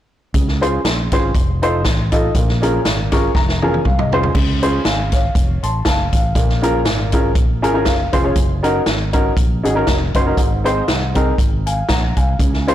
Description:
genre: uptempo gospel.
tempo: 120 BPM.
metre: 4/4.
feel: swing 55% on 8ths.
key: Db major.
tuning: A4 = 438 Hz.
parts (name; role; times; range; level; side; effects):
warm upright piano; accompaniment; 0.3-12.7 s; Ab2 to Db6; -18 LUFS; equal; none.
fingered electric bass; bass; 0.3-12.7 s; F1 to Db2; -21 LUFS; equal; transformer saturation.
swinging big-band drum kit; drums; 0.3-12.7 s; crash cymbal, hi-hat, kick drum, snare drum, toms; -17 LUFS; equal; none.
room: light reverb.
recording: blown-out, overdriven recording, overdrive.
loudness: -14 LUFS.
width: side -12 dB against mid.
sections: 0.3-4.3 A section; 4.3-12.7 B section.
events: upright piano fill 2.8-4.3, 7.4-8.4; drum fill 3.3-4.3.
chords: 0.3 Dbmaj7; 1.3 F7; 2.3 Bbm7; 4.3 Dbmaj7; 5.4 F; 6.4 Bbm7; 8.4 Gb6; 10.4 Ab.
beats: | 0.34 0.84 1.35 1.85 | 2.35 2.85 3.35 3.85 | 4.35 4.85 5.35 5.85 | 6.35 6.86 7.36 7.86 | 8.36 8.87 9.37 9.87 | 10.38 10.88 11.38 11.89 | 12.39.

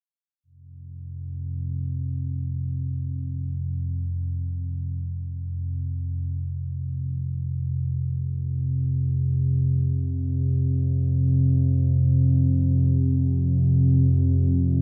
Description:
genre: ambient.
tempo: free time.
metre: none.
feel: none.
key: unclear.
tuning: A4 = 444 Hz.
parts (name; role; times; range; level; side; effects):
deep rumbling drone; drone; 0.7-14.8 s; F2 to C3; -24 LUFS; equal; built-in reverb.
room: wet huge ambient reverb, RT60 7.4 s.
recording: dreamy mix soaked in reverb.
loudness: -24 LUFS.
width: mono.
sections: 0.4-14.8 A section.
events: none.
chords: 0.4 F5.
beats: free time.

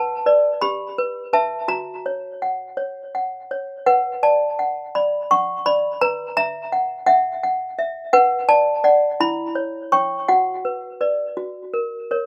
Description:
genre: classical, lullaby for toy piano.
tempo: 56 BPM (dotted quarters).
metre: 6/8.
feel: straight.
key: B minor.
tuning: A4 = 440 Hz.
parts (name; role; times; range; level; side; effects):
toy piano; solo; 0.0-12.3 s; E4 to C#6; -20 LUFS; equal; slapback echo.
room: little or no reverb.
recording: recorded outdoors, with no room sound.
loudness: -20 LUFS.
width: mono.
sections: 0.0-12.3 A section.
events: none.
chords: 0.0 Bm; 0.6 Em/G; 1.7 F#; 3.9 Bm; 6.0 F#7/B; 8.1 Bm; 9.2 C#dim/E; 10.3 Bm/F#; 11.4 F#.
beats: 0.61 | 1.69 2.78 | 3.87 4.94 | 6.01 7.08 | 8.13 9.20 | 10.29 11.38.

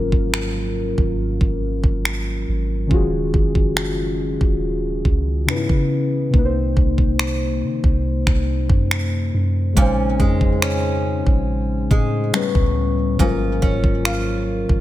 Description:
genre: contemporary R&B.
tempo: 70 BPM.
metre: 4/4.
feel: straight.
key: unclear.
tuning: A4 = 437 Hz.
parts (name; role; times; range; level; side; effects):
muted felt-like synth keys; accompaniment; 0.0-14.8 s; Ab2 to C5; -22 LUFS; left 2 dB; chorus.
soft 808-style bass; bass; 0.0-14.8 s; Eb1 to Eb3; -23 LUFS; equal; none.
smooth R&B drum kit; drums; 0.1-14.8 s; finger snaps, kick drum; -19 LUFS; equal; none.
picked old ladder-braced acoustic guitar; arpeggios; 9.8-14.8 s; Ab2 to F4; -25 LUFS; right 2 dB; ping-pong delay.
room: digital ambience.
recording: none.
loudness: -17 LUFS.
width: side -14 dB against mid.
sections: 0.0-14.8 A section.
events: none.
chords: 0.0 Ab13sus4; 2.9 Ebm11; 5.5 Dbm7; 6.3 Cm7; 9.8 Bbm11; 12.3 A9; 13.2 Ab13sus4.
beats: 0.34 1.19 2.05 | 2.91 3.77 4.62 5.48 | 6.34 7.19 8.05 8.91 | 9.77 10.62 11.48 12.34 | 13.19 14.05.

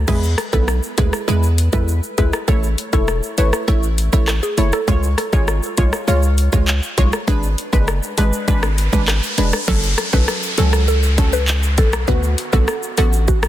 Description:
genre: dancehall.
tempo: 100 BPM.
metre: 4/4.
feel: straight.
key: F# minor.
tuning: A4 = 440 Hz.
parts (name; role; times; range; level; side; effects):
hard-hitting 808-style bass; bass; 0.0-13.5 s; E1 to E2; -17 LUFS; equal; none.
mallet-like synth pluck; melody; 0.1-4.8, 9.7-13.4 s; F#4 to B4; -24 LUFS; right 1 dB; chorus, phaser, digital delay.
punchy chord stab; accompaniment; 0.1-13.3 s; D3 to C#5; -23 LUFS; right 1 dB; chorus.
island pop drum kit; drums; 0.1-13.5 s; crash cymbal, handclaps, hi-hat, kick drum, rim click, shaker; -19 LUFS; equal; soft clipping on snare.
riser and downlifter; sound effects; 8.1-13.5 s; none; -26 LUFS; equal; none.
room: digital ambience.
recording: dense, heavily limited modern master.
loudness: -15 LUFS.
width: side -13 dB against mid.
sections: 0.1-9.7 A section; 9.7-13.5 B section.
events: riser 8.1-9.7.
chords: 0.1 E; 2.5 A; 4.9 C#; 7.3 G#dim; 9.7 F#m; 12.1 D6.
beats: | 0.08 0.68 1.28 1.88 | 2.48 3.08 3.68 4.28 | 4.88 5.48 6.08 6.68 | 7.28 7.88 8.48 9.08 | 9.68 10.28 10.88 11.48 | 12.08 12.68 13.28.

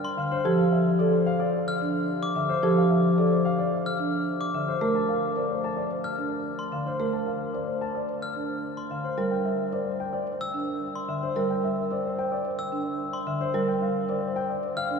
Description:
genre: classical, minimalist pattern music.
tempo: 110 BPM.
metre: 4/4.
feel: straight.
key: C mixolydian.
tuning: A4 = 438 Hz.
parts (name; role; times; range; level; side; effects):
glockenspiel with brass mallets; arpeggios; 0.0-14.9 s; C6 to F6; -33 LUFS; left 4 dB; none.
warm concert grand piano; melody; 0.2-14.9 s; A4 to A5; -30 LUFS; left 1 dB; none.
marimba with medium mallets; accompaniment; 0.2-13.7 s; D3 to A3; -29 LUFS; left 2 dB; none.
marimba with soft mallets; arpeggios; 0.5-15.0 s; D4 to C5; -30 LUFS; right 5 dB; none.
room: wet cathedral reverb, RT60 6.5 s.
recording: minimal, uncompressed stereo recording.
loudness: -24 LUFS.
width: side -5 dB against mid.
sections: 0.0-15.0 A section.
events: none.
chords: 0.5 Dm; 4.8 Bbmaj7; 9.2 C7; 13.5 Gm7.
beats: | 0.45 1.00 1.54 2.09 | 2.63 3.18 3.72 4.27 | 4.82 5.36 5.91 6.45 | 7.00 7.54 8.09 8.63 | 9.18 9.72 10.27 10.81 | 11.36 11.91 12.45 13.00 | 13.54 14.09 14.63.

